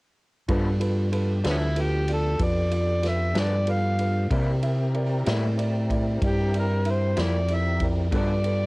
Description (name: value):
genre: slow blues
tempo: 63 BPM (dotted quarters)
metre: 12/8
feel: straight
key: unclear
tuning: A4 = 441 Hz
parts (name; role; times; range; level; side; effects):
- dark baby grand piano; accompaniment; 0.5-8.7 s; E4 to E5; -32 LUFS; right 2 dB; none
- electric guitar through a small old amp; accompaniment; 0.5-8.3 s; G2 to E4; -32 LUFS; left 2 dB; harmonic tremolo
- tonewheel organ; sustained chords; 0.5-8.7 s; F3 to Bb4; -35 LUFS; left 1 dB; chorus vibrato, slow rotary speaker
- fingered electric bass; bass; 0.5-8.7 s; D2 to C3; -24 LUFS; equal; none
- natural country drum kit; drums; 0.5-8.6 s; kick drum, ride cymbal, snare drum; -31 LUFS; equal; cassette tape
- overdriven harmonica; melody; 1.5-8.7 s; B3 to F5; -28 LUFS; equal; none
room: little or no reverb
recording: home recording on cassette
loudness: -22 LUFS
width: side -24 dB against mid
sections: 0.5-8.7 A section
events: harmonica solo 0.5-8.7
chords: 0.5 G7; 4.3 C7; 8.1 G7